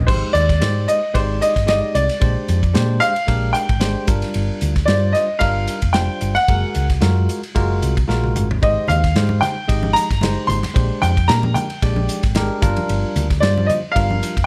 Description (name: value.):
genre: electric jazz fusion.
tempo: 112 BPM.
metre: 4/4.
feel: swing 55% on 16ths.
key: Ab lydian.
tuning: A4 = 438 Hz.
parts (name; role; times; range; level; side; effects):
bell-like tine electric piano; accompaniment; 0.0-14.3 s; G3 to Eb5; -27 LUFS; equal; none.
hollow-body short-scale fingered electric bass; bass; 0.0-14.5 s; F1 to Bb2; -22 LUFS; equal; none.
clear baby grand piano; melody; 0.1-14.4 s; C5 to C6; -22 LUFS; equal; plate reverb.
modern studio drum kit; drums; 0.1-14.5 s; crash cymbal, hi-hat, kick drum, ride cymbal, snare drum, toms; -24 LUFS; equal; none.
congas; percussion; 8.9-14.2 s; none; -30 LUFS; equal; none.
room: moderate club reverb, RT60 0.5 s.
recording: none.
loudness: -18 LUFS.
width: mono.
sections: 0.1-14.5 A section.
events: drum fill 8.1-8.6.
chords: 0.1 Abmaj7; 2.2 Bb13; 4.1 Gm7; 6.5 Gbmaj9; 8.6 Abmaj7; 10.8 Bb13; 12.6 Gm7.